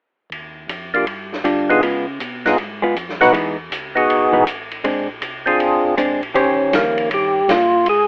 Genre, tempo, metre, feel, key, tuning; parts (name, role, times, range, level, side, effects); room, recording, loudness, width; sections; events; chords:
soul jazz organ trio; 159 BPM; 4/4; swing 66% on 8ths; A4 = 440 Hz
mellow tonewheel organ; bass; 0.3-8.1 s; Ab1 to D3; -35 LUFS; equal; slow rotary speaker
vintage drum kit; drums; 0.3-8.0 s; hi-hat, ride cymbal, snare drum; -27 LUFS; equal
percussive tonewheel organ; melody; 0.9-8.1 s; Bb3 to Cb5; -17 LUFS; equal; slow rotary speaker, overdrive
hollow-body jazz guitar; accompaniment; 1.4-7.4 s; Eb3 to C5; -21 LUFS; equal
moderate studio reverb, RT60 0.6 s; rough home demo mix, telephone sound; -18 LUFS; mono
0.3-6.4 A section; 6.4-8.1 B section
0.3 Ebmaj9; 1.8 Db7; 3.3 Emaj7; 4.8 Bb9; 6.4 Eb13